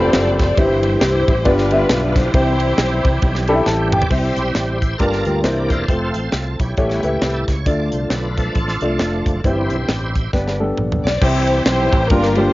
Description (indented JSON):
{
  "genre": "uptempo gospel",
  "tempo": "135 BPM",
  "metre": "4/4",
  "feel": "swing 59% on 8ths",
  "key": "C major",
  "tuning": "A4 = 439 Hz",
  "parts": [
    { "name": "dark studio string section", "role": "melody", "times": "0.0-3.7, 11.0-12.5 s", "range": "D4 to D5", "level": "-20 LUFS", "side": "left 1 dB", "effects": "cassette tape" },
    { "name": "dark upright piano", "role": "accompaniment", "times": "0.0-12.5 s", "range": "G2 to B5", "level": "-19 LUFS", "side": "left 1 dB", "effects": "cassette tape" },
    { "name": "bright tonewheel organ", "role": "sustained chords", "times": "0.0-12.5 s", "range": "D3 to D5", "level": "-24 LUFS", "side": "right 1 dB", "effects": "slow rotary speaker, chorus vibrato, cassette tape" },
    { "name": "fingered electric bass", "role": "bass", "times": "0.0-12.5 s", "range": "E1 to D2", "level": "-22 LUFS", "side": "equal", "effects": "none" },
    { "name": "tight funk drum kit", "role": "drums", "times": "0.1-12.4 s", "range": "crash cymbal, hi-hat, kick drum, ride cymbal, snare drum, toms", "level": "-20 LUFS", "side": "equal", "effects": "none" }
  ],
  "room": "light reverb",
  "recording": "home recording on cassette, nothing above 7.5 kHz",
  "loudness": "-15 LUFS",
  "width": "side -18 dB against mid",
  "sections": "0.0-4.1 A section; 4.1-11.2 B section; 11.2-12.5 A section",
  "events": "upright piano fill 3.2-4.1; drum fill 3.7-4.1, 10.3-11.2; tonewheel organ solo 4.1-11.2",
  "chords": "0.0 G9sus4; 0.6 C/G; 1.5 G7; 2.3 C; 5.0 Gm7; 5.4 C9; 5.9 F; 6.8 A7; 7.7 Dm; 9.4 C/G; 10.3 G; 11.2 C; 12.1 Gm7"
}